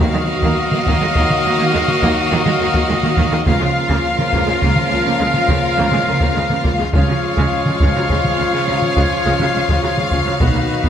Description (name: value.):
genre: cinematic, epic orchestral film score.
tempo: 69 BPM (dotted quarters).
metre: 12/8.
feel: straight.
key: unclear.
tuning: A4 = 441 Hz.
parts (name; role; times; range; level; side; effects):
warm symphonic violin section; melody; 0.0-10.9 s; F5; -23 LUFS; left 5 dB; none.
warm symphonic violin section; second line; 0.0-10.9 s; F4 to Gb4; -22 LUFS; left 3 dB; none.
warm symphonic viola section; accompaniment; 0.0-10.9 s; Gb3 to B3; -25 LUFS; right 2 dB; none.
dark French horn section; sustained chords; 0.0-10.9 s; Ab3 to Gb4; -27 LUFS; left 3 dB; none.
mellow trombone section; sustained chords; 0.0-10.9 s; Db3 to Gb3; -26 LUFS; right 3 dB; none.
warm woodwind section; sustained chords; 0.0-10.9 s; F#3 to F5; -26 LUFS; equal; none.
bright trumpet section; stabs; 0.0-10.9 s; B4 to F5; -22 LUFS; right 1 dB; none.
rich symphonic cello section; bass; 0.0-10.9 s; B2 to Eb3; -23 LUFS; right 3 dB; none.
warm symphonic double bass section; bass; 0.0-10.5 s; B1 to Eb2; -23 LUFS; right 2 dB; none.
timpani; percussion; 0.0-0.8 s; Eb3; -27 LUFS; left 1 dB; none.
solo taiko drums; drums; 0.4-10.9 s; none; -20 LUFS; left 1 dB; none.
room: moderate scoring stage reverb, RT60 1.6 s.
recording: none.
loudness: -14 LUFS.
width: side -9 dB against mid.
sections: 0.0-10.9 A section.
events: none.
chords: 0.0 Ebmadd9; 3.5 Bbm/Db; 6.9 Db.